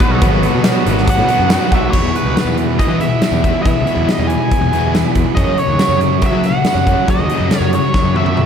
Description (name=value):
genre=classic rock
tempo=140 BPM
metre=4/4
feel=straight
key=unclear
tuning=A4 = 438 Hz
part: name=nasal lead guitar with a parked wah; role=melody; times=0.0-8.5 s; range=B4 to G#5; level=-19 LUFS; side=equal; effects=overdrive, analog delay
part: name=picked twelve-string acoustic guitar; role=accompaniment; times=0.0-8.5 s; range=F#2 to A#4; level=-23 LUFS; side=right 3 dB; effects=slapback echo
part: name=bright tonewheel organ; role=sustained chords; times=0.0-1.9 s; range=F#3 to F#4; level=-26 LUFS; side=equal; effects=none
part: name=cranked stack guitar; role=riff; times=0.0-8.5 s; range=E2 to B3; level=-21 LUFS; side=left 8 dB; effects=overdrive, tremolo, slapback echo
part: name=tight distorted guitar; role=riff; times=0.0-8.5 s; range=E2 to F#4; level=-24 LUFS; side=right 9 dB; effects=distortion, slapback echo
part: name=huge arena drum kit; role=drums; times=0.0-8.5 s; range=crash cymbal, hi-hat, kick drum, snare drum, tambourine, toms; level=-16 LUFS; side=equal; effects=none
part: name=fuzz picked electric bass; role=bass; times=0.1-8.5 s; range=G#1 to F#3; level=-19 LUFS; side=equal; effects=overdrive
room=moderate concert hall reverb, RT60 1.8 s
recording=big arena sound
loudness=-12 LUFS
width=side -8 dB against mid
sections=0.0-1.9 A section; 1.9-8.5 B section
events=lead electric guitar solo 0.0-1.9; drum fill 7.9-8.5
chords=0.0 B; 1.9 E; 5.4 F#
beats=| 0.23 0.66 1.08 1.51 | 1.94 2.37 2.80 3.23 | 3.65 4.08 4.51 4.94 | 5.37 5.80 6.23 6.66 | 7.09 7.52 7.95 8.38